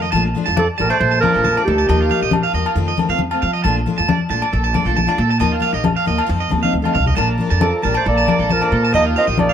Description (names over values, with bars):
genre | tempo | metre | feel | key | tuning
highlife guitar band | 136 BPM | 4/4 | straight | Bb major | A4 = 437 Hz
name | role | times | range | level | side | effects
picked steel-string acoustic guitar | accompaniment | 0.0-9.4 s | Eb3 to A4 | -24 LUFS | left 6 dB | none
electric guitar at the edge of break-up | arpeggios | 0.0-9.5 s | F4 to A5 | -21 LUFS | right 5 dB | spring reverb, tape echo
upright bass | bass | 0.0-9.5 s | Bb1 to F3 | -20 LUFS | equal | none
agogo bells | percussion | 0.1-9.5 s | none | -25 LUFS | left 4 dB | none
congas | percussion | 0.1-9.5 s | none | -21 LUFS | left 4 dB | none
warm clarinet | melody | 0.6-2.5, 7.6-9.5 s | G4 to Eb5 | -18 LUFS | right 2 dB | none
trombone with straight mute | second line | 0.6-2.5, 7.6-9.5 s | Eb3 to C4 | -28 LUFS | left 4 dB | tape echo
overdriven combo organ | sustained chords | 7.2-9.5 s | Eb4 to A5 | -29 LUFS | equal | none
room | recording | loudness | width
little or no reverb | none | -14 LUFS | side -9 dB against mid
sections
0.1-9.5 A section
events
drum fill 6.6-7.2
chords
0.1 Bbmaj7; 1.9 Ebadd9; 2.8 F7; 3.6 Bbmaj7; 5.4 Ebadd9; 6.3 F7; 7.2 Bbmaj7; 8.9 Ebadd9